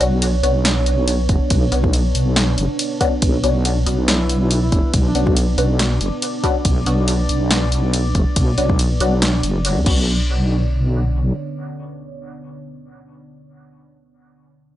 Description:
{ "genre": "deep dubstep", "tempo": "140 BPM", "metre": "4/4", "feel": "swing 54% on 16ths, half-time", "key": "B minor", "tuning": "A4 = 442 Hz", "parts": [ { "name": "deep dark ambient pad", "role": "sustained chords", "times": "0.0-13.4 s", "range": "D3 to D5", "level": "-26 LUFS", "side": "right 2 dB", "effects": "chorus, built-in reverb" }, { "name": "filtered dub chord stab", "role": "stabs", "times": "0.0-13.4 s", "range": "B3 to F#4", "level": "-24 LUFS", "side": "left 3 dB", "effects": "phaser, analog chorus, dub echo" }, { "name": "deep soft wobble bass", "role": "bass", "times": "0.0-11.3 s", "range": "F#1 to D2", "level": "-18 LUFS", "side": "equal", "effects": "chorus, tube saturation" }, { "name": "deep house drum kit", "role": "drums", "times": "0.0-10.0 s", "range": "crash cymbal, hi-hat, ride cymbal, snare drum", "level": "-23 LUFS", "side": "equal", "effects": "overdrive" }, { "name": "electronic kick drum", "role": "drums", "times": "1.3-10.0 s", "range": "none", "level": "-18 LUFS", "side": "equal", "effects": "overdrive" }, { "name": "mellow duduk", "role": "melody", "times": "4.1-5.4 s", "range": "D4 to E4", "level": "-28 LUFS", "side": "right 1 dB", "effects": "dub echo" } ], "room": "little or no reverb", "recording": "dry, gritty hardware recording, nothing above 11.0 kHz", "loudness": "-15 LUFS", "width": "side -13 dB against mid", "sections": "0.0-10.1 A section; 10.1-13.5 B section", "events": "drop 0.0-10.1", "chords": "0.0 Bmadd9", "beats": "0.22 0.65 1.08 | 1.51 1.93 2.36 2.79 | 3.22 3.65 4.08 4.51 | 4.93 5.36 5.79 6.22 | 6.65 7.08 7.51 7.93 | 8.36 8.79 9.22 9.65 | 10.08 10.51 10.93 11.36 | 11.79 12.22 12.65 13.08" }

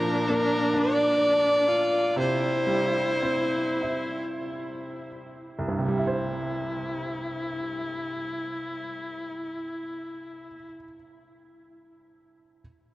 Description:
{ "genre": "celtic folk, Celtic slow air", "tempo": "27-45 BPM (dotted quarters)", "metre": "6/8", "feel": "rubato", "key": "C mixolydian", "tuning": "A4 = 440 Hz", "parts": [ { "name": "clear fiddle", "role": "melody", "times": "0.0-4.4 s", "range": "A4 to D5", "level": "-25 LUFS", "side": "equal", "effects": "none" }, { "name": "rich viola", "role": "second line", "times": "0.0-10.7 s", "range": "D4 to F4", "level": "-30 LUFS", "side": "left 1 dB", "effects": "none" }, { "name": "bright upright piano", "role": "accompaniment", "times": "0.0-12.6 s", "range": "C2 to C5", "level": "-31 LUFS", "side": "right 1 dB", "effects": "none" } ], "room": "wet cathedral reverb, RT60 6.1 s", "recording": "worn, warbling old tape, cassette tape, warbly pitch drift", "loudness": "-24 LUFS", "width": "side -17 dB against mid", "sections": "0.0-5.8 A section; 5.8-10.1 B section", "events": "slowing down 0.0-5.8", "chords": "0.0 Bb; 2.2 C", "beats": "0.75 | 2.18 3.83 | 5.83 7.97" }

